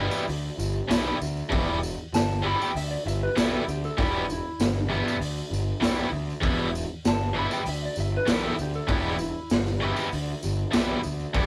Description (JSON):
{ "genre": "garage rock duo or trio", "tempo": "98 BPM", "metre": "4/4", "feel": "straight", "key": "E minor", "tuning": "A4 = 439 Hz", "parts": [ { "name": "biting overdriven guitar", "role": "riff", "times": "0.0-11.5 s", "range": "E2 to E4", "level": "-29 LUFS", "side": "equal", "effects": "none" }, { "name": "fuzz picked electric bass", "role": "bass", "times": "0.0-11.5 s", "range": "E1 to D2", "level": "-32 LUFS", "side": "equal", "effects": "overdrive" }, { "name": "tambourine", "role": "percussion", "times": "0.1-11.3 s", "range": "none", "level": "-44 LUFS", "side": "equal", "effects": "none" }, { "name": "raw garage drum kit", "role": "drums", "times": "0.3-11.5 s", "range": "hi-hat, kick drum, snare drum", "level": "-31 LUFS", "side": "equal", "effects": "none" }, { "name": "electric slide guitar", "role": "melody", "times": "2.1-9.8 s", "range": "E4 to B5", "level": "-34 LUFS", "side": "equal", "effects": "none" } ], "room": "moderate booth ambience, RT60 0.2 s", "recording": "rough rehearsal-room recording, warm saturation", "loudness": "-27 LUFS", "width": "mono", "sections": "0.0-11.5 A section", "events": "none", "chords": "0.0 Em" }